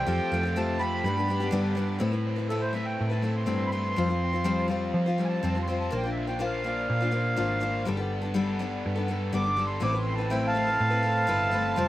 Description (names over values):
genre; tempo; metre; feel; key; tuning
rock; 123 BPM; 4/4; straight; unclear; A4 = 440 Hz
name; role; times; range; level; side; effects
accordion; melody; 0.0-11.9 s; A4 to D6; -29 LUFS; right 1 dB; none
picked steel-string acoustic guitar; accompaniment; 0.0-11.9 s; G2 to C5; -30 LUFS; left 4 dB; none
pedal harmonium; sustained chords; 0.0-2.0, 9.8-11.9 s; C4 to C5; -36 LUFS; right 4 dB; none
overdriven electric guitar; riff; 0.0-11.9 s; G2 to C5; -35 LUFS; right 2 dB; spring reverb
hollow-body short-scale picked electric bass; bass; 0.0-11.9 s; F1 to F3; -30 LUFS; right 1 dB; none
room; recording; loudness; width
little or no reverb; recorded outdoors, with no room sound; -25 LUFS; side -15 dB against mid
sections
0.0-2.0 A section; 2.0-11.9 B section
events
accordion solo 2.0-11.9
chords
0.1 Fadd9; 1.0 G; 2.0 Amadd9; 4.0 Fsus2; 5.9 Bbadd9; 7.9 Gadd9; 9.8 Amadd9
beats
| 0.07 0.56 1.05 1.53 | 2.02 2.51 3.00 3.48 | 3.97 4.46 4.95 5.44 | 5.93 6.41 6.90 7.39 | 7.88 8.37 8.85 9.34 | 9.83 10.31 10.80 11.29 | 11.78